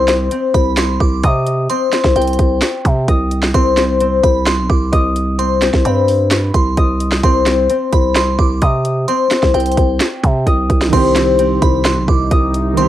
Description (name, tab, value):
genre	hip hop, trap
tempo	130 BPM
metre	4/4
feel	half-time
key	C harmonic minor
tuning	A4 = 440 Hz
part	glassy synth bell	second line	0.0-12.9 s	G5 to D6	-22 LUFS	right 6 dB	chorus, cassette tape, analog delay
part	concert harp	arpeggios	0.0-12.9 s	C4 to Eb5	-17 LUFS	left 5 dB	cassette tape, analog delay
part	growling 808-style bass	bass	0.0-12.9 s	B1 to C3	-16 LUFS	right 1 dB	none
part	trap drum kit	drums	0.1-12.9 s	crash cymbal, handclaps, hi-hat, kick drum, snare drum	-16 LUFS	right 1 dB	overdrive
part	dark concert grand piano	accompaniment	10.9-12.9 s	Eb3 to G4	-19 LUFS	right 8 dB	cassette tape
part	sweeping resonant pad	sustained chords	10.9-12.9 s	C3 to G4	-24 LUFS	left 1 dB	chorus, phaser, cassette tape
room	light reverb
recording	home recording on cassette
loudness	-12 LUFS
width	side -12 dB against mid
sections	0.0-10.9 A section; 10.9-12.9 B section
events	drum fill 10.5-10.9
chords	0.0 Cm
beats	0.31 0.77 1.24 | 1.70 2.16 2.62 3.08 | 3.54 4.00 4.47 4.93 | 5.39 5.85 6.31 6.77 | 7.24 7.70 8.16 8.62 | 9.08 9.54 10.01 10.47 | 10.93 11.39 11.85 12.31 | 12.77